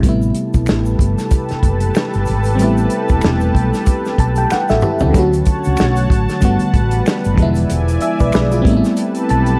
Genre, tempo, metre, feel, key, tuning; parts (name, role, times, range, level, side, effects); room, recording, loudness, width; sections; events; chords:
R&B, neo-soul; 94 BPM; 4/4; swing 57% on 16ths; A4 = 440 Hz
FM electric piano; accompaniment; 0.0-9.6 s; C3 to A5; -20 LUFS; equal; chorus, phaser
lush unison pad; sustained chords; 0.6-9.6 s; F3 to A5; -25 LUFS; equal; chorus
mellow fretless electric bass; bass; 0.0-9.6 s; E1 to D2; -19 LUFS; equal
warm soul drum kit; drums; 0.0-9.6 s; hi-hat, kick drum, snare drum, toms; -20 LUFS; equal
egg shaker and finger snaps; percussion; 0.0-9.6 s; -37 LUFS; equal
light reverb, studio ambience; dark, warm production, vinyl crackle; -15 LUFS; mono
0.0-5.1 A section; 5.1-9.6 B section
FM electric piano fill 3.9-5.1, 9.0-9.6; drum fill 4.5-5.1
0.0 Am9; 5.1 Dmaj7; 6.4 Gmaj9; 7.4 E7b9; 8.7 Am9